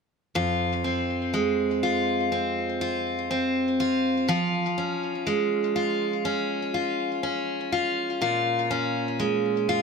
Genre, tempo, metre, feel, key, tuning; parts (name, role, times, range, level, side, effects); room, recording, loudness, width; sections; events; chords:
pop; 61 BPM; 4/4; straight; F minor; A4 = 440 Hz
picked steel-string acoustic guitar; solo; 0.4-9.8 s; F2 to F4; -23 LUFS; equal; ping-pong delay
moderate plate reverb, RT60 2.5 s; -23 LUFS; side -5 dB against mid
0.3-9.8 A section
0.3 Fm; 4.3 Db/F; 8.2 Bbm7